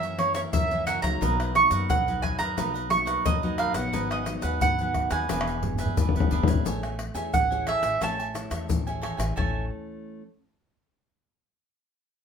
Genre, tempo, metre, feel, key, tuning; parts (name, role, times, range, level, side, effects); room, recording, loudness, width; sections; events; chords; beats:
samba and choro; 88 BPM; 4/4; straight; A major from 6.7 s; A4 = 439 Hz
mandolin; melody; 0.0-9.7 s; C#5 to C#6; -26 LUFS; right 4 dB
cavaquinho; accompaniment; 0.0-9.6 s; D4 to G#5; -34 LUFS; right 5 dB
nylon-string guitar; accompaniment; 0.0-10.2 s; F#2 to G#4; -34 LUFS; left 2 dB
upright bass; bass; 0.0-9.7 s; E1 to F#2; -33 LUFS; left 1 dB
egg shaker, pandeiro, tamborim and surdo; percussion; 0.0-9.5 s; -28 LUFS; left 3 dB
moderate studio reverb, RT60 0.6 s; minimal, uncompressed stereo recording; -23 LUFS; side -6 dB against mid
0.0-6.7 A section; 6.7-9.4 B section; 9.4-12.1 C section
drum fill 5.3-6.7
0.0 F#7; 1.2 Bmaj7; 3.9 G#m7; 5.3 E7; 6.7 Amaj7; 9.4 A
0.54 | 1.22 1.90 2.58 3.26 | 3.94 4.62 5.30 5.98 | 6.66 7.34 8.02 8.70 | 9.38 10.05